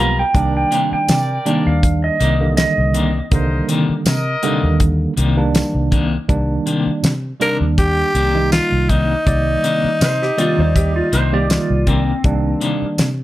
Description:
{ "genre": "straight-eighth soul blues", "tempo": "81 BPM", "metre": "4/4", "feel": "swing 54% on 16ths", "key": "C minor", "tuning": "A4 = 444 Hz", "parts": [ { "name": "clean lap steel guitar", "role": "second line", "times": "0.0-4.8, 10.0-12.6 s", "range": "C4 to A#5", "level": "-20 LUFS", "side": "right 2 dB", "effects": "none" }, { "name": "tine electric piano", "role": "accompaniment", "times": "0.0-13.1 s", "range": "D3 to D5", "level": "-21 LUFS", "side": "right 3 dB", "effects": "medium stereo tremolo" }, { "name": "clean electric guitar", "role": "stabs", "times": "0.0-12.9 s", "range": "C3 to A#4", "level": "-21 LUFS", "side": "left 4 dB", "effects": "tremolo" }, { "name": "vintage muted fingered electric bass", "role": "bass", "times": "0.0-13.2 s", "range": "B1 to C3", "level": "-19 LUFS", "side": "equal", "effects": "none" }, { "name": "clear horn section", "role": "sustained chords", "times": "0.3-4.8 s", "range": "D4 to Eb5", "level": "-26 LUFS", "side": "left 1 dB", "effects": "none" }, { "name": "damped 70s drum kit", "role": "drums", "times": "0.3-13.2 s", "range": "hi-hat, kick drum, snare drum, tambourine", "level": "-18 LUFS", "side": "equal", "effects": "none" }, { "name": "growling tenor saxophone", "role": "melody", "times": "7.4-11.9 s", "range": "Eb4 to Bb4", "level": "-19 LUFS", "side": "left 1 dB", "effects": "none" } ], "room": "light reverb", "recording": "none", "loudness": "-14 LUFS", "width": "side -15 dB against mid", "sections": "0.0-6.3 A section; 6.3-13.2 B section", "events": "electric slide guitar solo 0.0-6.3", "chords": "0.3 Cm9" }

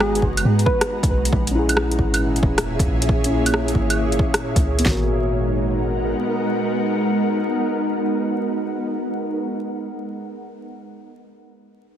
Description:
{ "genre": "future garage", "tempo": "136 BPM", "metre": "4/4", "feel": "swing 67% on 16ths", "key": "G# minor", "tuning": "A4 = 439 Hz", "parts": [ { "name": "soft struck synth lead", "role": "melody", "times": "0.0-1.0 s", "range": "G#4 to B4", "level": "-27 LUFS", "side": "right 1 dB", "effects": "chorus, phaser, dub echo" }, { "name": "muted felt-like synth keys", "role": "accompaniment", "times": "0.0-9.6 s", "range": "B3 to B4", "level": "-26 LUFS", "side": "left 2 dB", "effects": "chorus, vintage 12-bit sampler grit, sidechain pumping, tape echo" }, { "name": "ethereal airy pad", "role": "sustained chords", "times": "0.0-9.1 s", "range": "A#2 to A#5", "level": "-23 LUFS", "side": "right 1 dB", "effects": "ensemble chorus, built-in reverb, sidechain pumping" }, { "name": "soft 808-style bass", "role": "bass", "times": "0.0-6.1 s", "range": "E1 to G#2", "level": "-22 LUFS", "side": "equal", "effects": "sidechain pumping" }, { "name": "deep house drum kit", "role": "drums", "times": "0.0-4.8 s", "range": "claves, hi-hat, rim click", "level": "-23 LUFS", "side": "right 1 dB", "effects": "overdrive" }, { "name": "deep house drum kit", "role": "drums", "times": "0.2-5.0 s", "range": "kick drum, snare drum", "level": "-21 LUFS", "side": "equal", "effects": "overdrive" } ], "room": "moderate recital hall reverb, RT60 1.4 s, digital ambience", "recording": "heavily compressed radio sound, multiband compression, vinyl crackle", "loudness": "-18 LUFS", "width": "side -10 dB against mid", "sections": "0.0-4.9 A section; 4.9-8.4 B section", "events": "none", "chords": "0.0 G#m9; 1.3 A#m7b5; 4.9 G#m9" }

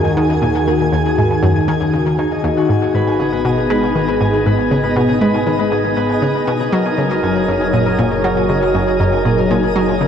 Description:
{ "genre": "ambient, sequencer-driven space music", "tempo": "119 BPM", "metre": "4/4", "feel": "straight", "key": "G# minor", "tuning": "A4 = 441 Hz", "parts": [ { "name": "sweeping resonant pad", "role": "sustained chords", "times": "0.0-10.1 s", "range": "D#3 to C#5", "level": "-18 LUFS", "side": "equal", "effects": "chorus, tremolo" }, { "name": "concert harp", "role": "arpeggios", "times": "0.0-10.1 s", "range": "D#4 to G#5", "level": "-20 LUFS", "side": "left 2 dB", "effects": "auto-pan, ping-pong delay" }, { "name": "analog pluck", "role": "riff", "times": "0.0-10.1 s", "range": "D#2 to G#3", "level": "-18 LUFS", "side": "equal", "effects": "chorus, ping-pong delay" }, { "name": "fat analog bass", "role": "bass", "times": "0.0-10.1 s", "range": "F#1 to D#2", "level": "-27 LUFS", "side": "right 1 dB", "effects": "none" }, { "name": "twinkling granular texture", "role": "texture", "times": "0.0-10.1 s", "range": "D#4 to G#5", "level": "-24 LUFS", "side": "equal", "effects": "built-in reverb" } ], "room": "wet huge ambient reverb, RT60 7.9 s", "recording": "worn, warbling old tape, cassette tape, warbly pitch drift", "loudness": "-13 LUFS", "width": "side -8 dB against mid", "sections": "0.0-10.1 A section", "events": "none", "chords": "0.0 D#m; 2.7 G#m; 6.7 F#" }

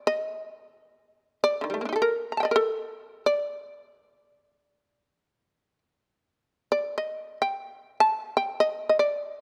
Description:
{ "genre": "japanese traditional", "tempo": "free time", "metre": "none", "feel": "none", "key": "unclear", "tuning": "A4 = 440 Hz", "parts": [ { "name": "shamisen", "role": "solo", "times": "0.0-9.4 s", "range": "D3 to Bb5", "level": "-26 LUFS", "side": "equal", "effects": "none" } ], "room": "light reverb", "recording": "close, detailed microphones", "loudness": "-27 LUFS", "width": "mono", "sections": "0.0-9.4 A section", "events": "none", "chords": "none" }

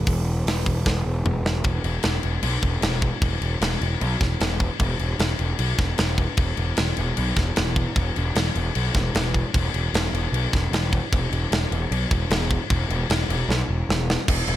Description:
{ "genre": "heavy metal", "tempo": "152 BPM", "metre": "4/4", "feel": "straight", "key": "unclear", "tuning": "A4 = 440 Hz", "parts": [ { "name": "fuzz picked electric bass", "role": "bass", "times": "0.0-14.6 s", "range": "E1 to B1", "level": "-23 LUFS", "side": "equal", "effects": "overdrive" }, { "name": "tight metal drum kit", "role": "drums", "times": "0.1-14.6 s", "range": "crash cymbal, hi-hat, kick drum, snare drum, toms", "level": "-24 LUFS", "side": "equal", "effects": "none" } ], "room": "little or no reverb", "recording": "none", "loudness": "-21 LUFS", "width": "side -13 dB against mid", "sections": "0.0-1.6 A section; 1.6-14.3 B section", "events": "drum fill 0.9-1.6, 13.5-14.3", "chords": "none" }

